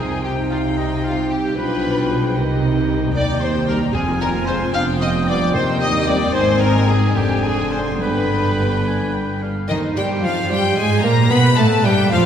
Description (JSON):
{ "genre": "quick classical-period movement for symphony orchestra", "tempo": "75 BPM (dotted quarters)", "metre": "6/8", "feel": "straight", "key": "C minor from 3.2 s", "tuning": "A4 = 440 Hz", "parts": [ { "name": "warm chamber violin section", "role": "melody", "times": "0.0-12.3 s", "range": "Eb5 to B5", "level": "-27 LUFS", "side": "left 5 dB", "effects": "none" }, { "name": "bright flute section", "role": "second line", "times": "0.0-12.3 s", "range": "Eb5 to F6", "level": "-29 LUFS", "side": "left 2 dB", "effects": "none" }, { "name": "clear oboe", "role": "second line", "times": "0.0-12.3 s", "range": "B4 to Ab5", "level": "-30 LUFS", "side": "right 2 dB", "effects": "none" }, { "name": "dark clarinet", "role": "second line", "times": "0.0-12.3 s", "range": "B3 to B4", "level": "-26 LUFS", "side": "left 2 dB", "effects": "none" }, { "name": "dark symphonic violin section", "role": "second line", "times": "0.0-12.3 s", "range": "Eb4 to F5", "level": "-26 LUFS", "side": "left 3 dB", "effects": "none" }, { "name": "mellow bassoon", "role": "accompaniment", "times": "0.0-12.3 s", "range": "C3 to B3", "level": "-27 LUFS", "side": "equal", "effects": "none" }, { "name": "warm chamber viola section", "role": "accompaniment", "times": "0.0-12.3 s", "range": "Eb3 to Ab4", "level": "-27 LUFS", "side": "right 1 dB", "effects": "none" }, { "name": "mellow French horn section", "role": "sustained chords", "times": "0.0-12.2 s", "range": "Eb3 to F4", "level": "-28 LUFS", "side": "left 2 dB", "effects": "none" }, { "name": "clear trumpet", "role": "stabs", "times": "0.0-9.4 s", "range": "Eb4 to F5", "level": "-28 LUFS", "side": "right 1 dB", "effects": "none" }, { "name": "rich chamber cello section", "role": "bass", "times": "0.0-12.3 s", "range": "Eb2 to B3", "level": "-23 LUFS", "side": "right 2 dB", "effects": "none" }, { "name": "warm chamber double bass section", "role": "bass", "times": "0.0-12.3 s", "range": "F1 to B2", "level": "-22 LUFS", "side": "right 2 dB", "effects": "none" } ], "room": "wet cathedral reverb, RT60 4.2 s", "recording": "recorded in a church or concert hall", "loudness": "-16 LUFS", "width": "side -8 dB against mid", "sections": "0.0-9.7 A section; 9.7-12.3 B section", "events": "none", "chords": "0.0 Cm; 1.6 G7/B; 2.4 Cm; 3.2 Eb; 3.9 Fm; 4.7 G7/F; 5.5 Cm/Eb; 6.3 Ab; 7.2 Dm7b5/F; 8.0 G; 9.7 Cm/Eb; 11.3 Gadd9" }